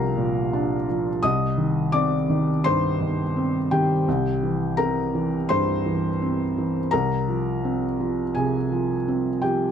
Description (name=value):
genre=neoclassical minimalist piano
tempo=84 BPM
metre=4/4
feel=rubato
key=C minor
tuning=A4 = 440 Hz
part: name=felt-muted upright piano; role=solo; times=0.0-9.7 s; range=C2 to Eb6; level=-21 LUFS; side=equal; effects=none
room=little or no reverb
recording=close, detailed microphones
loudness=-21 LUFS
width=side -8 dB against mid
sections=0.0-9.7 A section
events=none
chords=0.0 Bb/C; 1.2 Cm; 4.1 C7; 6.9 Fm/C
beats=0.52 | 1.23 1.93 2.65 3.36 | 4.07 4.78 5.49 6.21 | 6.92 7.63 8.35 9.08